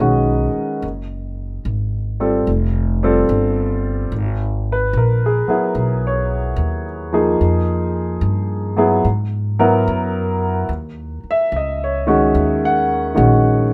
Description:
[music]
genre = jazz ballad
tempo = 73 BPM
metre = 4/4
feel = swing 66% on 8ths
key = unclear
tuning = A4 = 440 Hz
[part]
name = warm grand piano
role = accompaniment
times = 0.0-13.7 s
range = D#3 to F#5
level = -20 LUFS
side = equal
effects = none
[part]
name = upright bass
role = bass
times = 0.0-13.7 s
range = F1 to G#2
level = -22 LUFS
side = equal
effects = none
[sound]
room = light reverb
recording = none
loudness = -18 LUFS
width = mono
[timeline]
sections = 0.0-13.7 A section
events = none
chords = 0.0 Bmaj9; 0.8 F#m; 2.5 Fadd9; 4.1 E69; 7.4 Fm9; 9.0 Eadd9; 10.7 D#m7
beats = 0.01 | 0.83 1.65 2.47 3.29 | 4.11 4.93 5.75 6.58 | 7.40 8.22 9.04 9.86 | 10.68 11.51 12.33 13.15

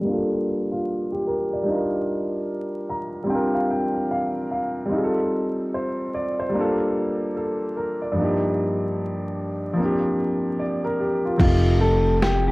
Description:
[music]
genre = lo-fi hip hop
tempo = 74 BPM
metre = 4/4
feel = swing 62% on 16ths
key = unclear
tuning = A4 = 443 Hz
[part]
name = warm upright piano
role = accompaniment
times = 0.0-12.5 s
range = G2 to Bb5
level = -22 LUFS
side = equal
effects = low-pass filter
[part]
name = mellow electric guitar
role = melody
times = 11.4-12.5 s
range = F4 to A4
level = -22 LUFS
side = left 1 dB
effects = none
[part]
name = upright bass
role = bass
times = 11.4-12.5 s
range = F1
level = -20 LUFS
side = equal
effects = transformer saturation
[part]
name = boom bap sampler-style drum kit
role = drums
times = 11.4-12.5 s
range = crash cymbal, kick drum, snare drum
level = -24 LUFS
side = equal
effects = none
[sound]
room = moderate spring reverb, RT60 2.4 s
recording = worn, warbling old tape, cassette tape, vinyl crackle, warbly pitch drift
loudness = -21 LUFS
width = side -22 dB against mid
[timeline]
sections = 0.0-11.4 A section; 11.4-12.5 B section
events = filter sweep on upright piano 0.0-11.4; upright piano fill 2.5-4.9; hi-hats muted 11.4-12.5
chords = 0.0 Gm9; 1.7 Ebmaj9/G; 3.3 C9sus4; 4.9 F7; 6.5 Gm9; 8.2 Ebmaj9/G; 9.8 C9sus4; 11.4 F7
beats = 0.05 0.86 | 1.67 2.48 3.29 4.10 | 4.91 5.72 6.54 7.35 | 8.16 8.97 9.78 10.59 | 11.40 12.21

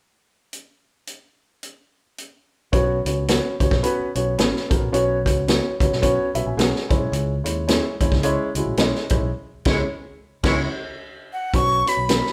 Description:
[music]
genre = uptempo 1960s-style soul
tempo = 109 BPM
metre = 4/4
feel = swing 59% on 8ths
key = B major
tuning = A4 = 440 Hz
[part]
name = vintage drum kit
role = drums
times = 0.5-12.3 s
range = crash cymbal, hi-hat, kick drum, snare drum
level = -24 LUFS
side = equal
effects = none
[part]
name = dark upright piano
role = accompaniment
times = 2.7-12.3 s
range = G#3 to B5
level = -26 LUFS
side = equal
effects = none
[part]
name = fingered electric bass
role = bass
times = 2.7-12.2 s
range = G#1 to D#2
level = -29 LUFS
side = equal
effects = none
[part]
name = mellow electric guitar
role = stabs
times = 3.3-12.2 s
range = B3 to C#5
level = -32 LUFS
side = equal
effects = none
[part]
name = clear horn section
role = second line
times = 9.7-10.6 s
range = G#3 to C#5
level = -29 LUFS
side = equal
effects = none
[part]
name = breathy bright jazz flute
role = melody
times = 11.3-12.3 s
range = F#5 to C#6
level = -23 LUFS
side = equal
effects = none
[sound]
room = moderate large studio reverb, RT60 1.0 s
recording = band playing live in one room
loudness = -21 LUFS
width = mono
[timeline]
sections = 0.5-2.7 A section; 2.7-11.5 B section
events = upright piano fill 6.0-7.1; band accent 9.3-11.5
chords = 0.5 N.C.; 2.7 Bsus2; 6.9 C#m; 11.3 N.C.; 11.5 Bsus2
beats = | 0.52 1.07 1.63 2.18 | 2.73 3.28 3.83 4.38 | 4.93 5.48 6.03 6.58 | 7.13 7.68 8.23 8.78 | 9.33 9.88 10.43 10.98 | 11.53 12.08

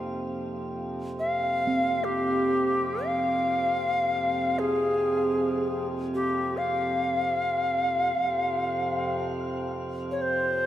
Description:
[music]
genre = world meditative, free-time meditation music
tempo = free time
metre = none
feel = none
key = F minor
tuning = A4 = 438 Hz
[part]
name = pedal harmonium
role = drone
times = 0.0-10.7 s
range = F2 to C3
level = -32 LUFS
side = right 1 dB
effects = none
[part]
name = bronze singing bowl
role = texture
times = 0.0-9.8 s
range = Bb3 to Eb4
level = -34 LUFS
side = right 2 dB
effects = none
[part]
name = bright Native American-style cedar flute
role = melody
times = 1.2-10.7 s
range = G4 to F5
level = -26 LUFS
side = left 1 dB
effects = shimmer reverb
[sound]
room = wet church reverb, RT60 3.6 s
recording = none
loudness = -24 LUFS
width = side -12 dB against mid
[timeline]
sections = 0.0-10.7 A section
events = none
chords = none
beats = free time

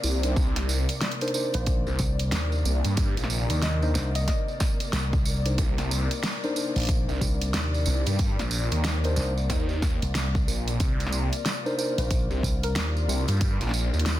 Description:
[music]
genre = glitch hop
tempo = 92 BPM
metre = 4/4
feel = swing 61% on 16ths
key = C minor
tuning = A4 = 440 Hz
[part]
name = dark studio string section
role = sustained chords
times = 0.0-14.2 s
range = C3 to D5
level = -35 LUFS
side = left 3 dB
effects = sidechain pumping
[part]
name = phased detuned saw bass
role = bass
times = 0.0-14.2 s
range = Bb1 to G2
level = -26 LUFS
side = equal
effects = phaser, overdrive
[part]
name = tambourine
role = percussion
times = 0.0-14.2 s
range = none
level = -36 LUFS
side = right 6 dB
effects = none
[part]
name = mellow tine electric piano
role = stabs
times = 0.2-14.2 s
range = D4 to C5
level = -34 LUFS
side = left 1 dB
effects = phaser, sidechain pumping, ping-pong delay
[part]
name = pop drum kit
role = drums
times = 0.2-14.2 s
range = hi-hat, snare drum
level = -32 LUFS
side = equal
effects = studio reverb
[part]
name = electronic kick drum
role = drums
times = 0.4-13.6 s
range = none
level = -26 LUFS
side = equal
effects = studio reverb
[part]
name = woody wave-folded pluck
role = melody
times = 1.5-4.4, 12.0-12.9 s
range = Bb4 to Eb5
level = -38 LUFS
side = left 2 dB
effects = chorus, ping-pong delay
[part]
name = slap bass with an envelope filter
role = bass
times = 1.5-13.1 s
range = Bb1 to Eb2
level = -27 LUFS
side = equal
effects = none
[sound]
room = little or no reverb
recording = dense, heavily limited modern master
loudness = -23 LUFS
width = side -14 dB against mid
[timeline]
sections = 0.0-14.2 A section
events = break 0.0-0.4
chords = 0.0 Cm9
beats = | 0.37 1.02 1.67 2.32 | 2.98 3.63 4.28 4.93 | 5.58 6.24 6.89 7.54 | 8.19 8.85 9.50 10.15 | 10.80 11.45 12.11 12.76 | 13.41 14.06

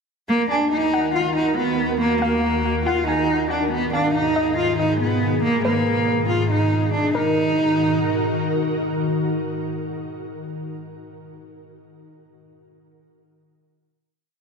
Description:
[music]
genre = hip hop, drill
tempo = 140 BPM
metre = 4/4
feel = half-time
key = Eb harmonic minor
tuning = A4 = 442 Hz
[part]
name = warm cello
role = melody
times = 0.3-8.4 s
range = Bb3 to F4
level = -20 LUFS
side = right 1 dB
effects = ping-pong delay
[part]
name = ethereal airy pad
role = sustained chords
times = 0.7-10.5 s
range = Eb2 to Bb4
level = -24 LUFS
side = equal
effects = ensemble chorus, built-in reverb
[part]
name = warbly dusty pluck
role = second line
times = 0.5-8.4 s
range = Bb4 to Ab5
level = -28 LUFS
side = left 2 dB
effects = chorus, ping-pong delay
[sound]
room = wet plate reverb, RT60 2.3 s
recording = dreamy mix soaked in reverb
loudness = -18 LUFS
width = side -5 dB against mid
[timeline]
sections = 0.3-7.1 breakdown; 7.1-10.6 final chord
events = none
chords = 0.3 Ebm; 3.7 Abm; 7.1 Ebm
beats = | 0.29 0.72 1.15 1.58 | 2.00 2.43 2.86 3.29 | 3.72 4.15 4.58 5.00 | 5.43 5.86 6.29 6.72 | 7.15 7.58 8.01 8.43 | 8.86 9.29 9.72 10.15

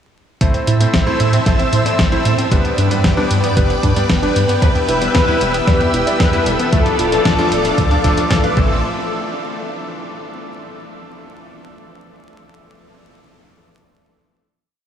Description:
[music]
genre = italo disco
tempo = 114 BPM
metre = 4/4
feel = straight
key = A minor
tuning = A4 = 440 Hz
[part]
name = string machine, full ensemble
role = sustained chords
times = 0.4-8.8 s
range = A3 to E6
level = -21 LUFS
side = right 1 dB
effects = ensemble chorus
[part]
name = analog pluck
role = arpeggios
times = 0.4-8.8 s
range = G3 to F5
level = -24 LUFS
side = right 2 dB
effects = chorus, diffuse ambient delay
[part]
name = clear electric grand piano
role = stabs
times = 0.4-8.8 s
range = E3 to D5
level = -22 LUFS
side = left 3 dB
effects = diffuse ambient delay
[part]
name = round analog bass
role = bass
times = 0.4-8.8 s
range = D1 to A2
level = -19 LUFS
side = right 1 dB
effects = diffuse ambient delay
[part]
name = clean 12-bit digital drum machine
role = drums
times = 0.4-8.5 s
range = hi-hat, snare drum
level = -22 LUFS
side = equal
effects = none
[part]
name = electronic kick drum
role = drums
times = 0.4-8.7 s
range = none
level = -17 LUFS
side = equal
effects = none
[part]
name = dark studio violin section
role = melody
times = 4.6-8.3 s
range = G4 to B4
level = -22 LUFS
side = left 2 dB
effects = diffuse ambient delay
[sound]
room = wet huge ambient reverb, RT60 7.6 s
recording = dreamy mix soaked in reverb, vinyl crackle, small room reverb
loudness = -13 LUFS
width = side -9 dB against mid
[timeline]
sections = 0.4-8.8 verse; 8.8-10.9 final hit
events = none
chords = 0.4 Am; 2.5 G; 4.6 Em; 6.7 Dm; 8.6 Am; 8.8 N.C.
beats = | 0.41 0.94 1.46 1.99 | 2.52 3.04 3.57 4.09 | 4.62 5.15 5.67 6.20 | 6.73 7.25 7.78 8.30

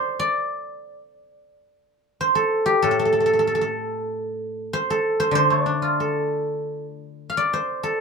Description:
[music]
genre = chinese traditional, Chinese solo plucked strings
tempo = 87-98 BPM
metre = 2/4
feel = rubato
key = D yu mode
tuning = A4 = 441 Hz
[part]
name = guzheng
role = solo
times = 0.0-8.0 s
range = A2 to F5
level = -20 LUFS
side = equal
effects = none
[sound]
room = light reverb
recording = minimal, uncompressed stereo recording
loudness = -20 LUFS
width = side -5 dB against mid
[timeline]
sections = 0.0-1.6 A section; 1.6-8.0 B section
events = none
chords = none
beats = | 0.21 0.87 | 1.55 2.21 | 2.85 3.48 | 4.11 4.73 | 5.35 6.00 | 6.67 7.34 | 8.00

